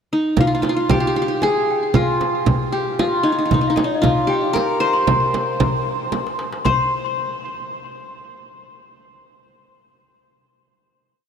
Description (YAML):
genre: Arabic maqam ensemble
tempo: 115 BPM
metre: 3/4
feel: straight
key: unclear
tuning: A4 = 440 Hz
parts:
  - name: qanun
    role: melody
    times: 0.1-6.9 s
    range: Eb4 to C5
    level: -20 LUFS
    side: equal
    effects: ping-pong delay
  - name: celesta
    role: second line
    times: 0.4-6.9 s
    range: D5-50c to C6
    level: -24 LUFS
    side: left 4 dB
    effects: lush chorus, ping-pong delay
  - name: darbuka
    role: percussion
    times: 0.4-6.9 s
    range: none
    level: -24 LUFS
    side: left 2 dB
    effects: none
  - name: frame drum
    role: percussion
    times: 0.4-6.9 s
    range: none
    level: -24 LUFS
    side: right 6 dB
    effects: none
room: wet huge ambient reverb, RT60 5.1 s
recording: dreamy mix soaked in reverb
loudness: -16 LUFS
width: side -7 dB against mid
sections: 0.0-0.4 pickup bar; 0.4-6.7 A section; 6.7-8.2 final note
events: drum fill 6.1-6.7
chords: none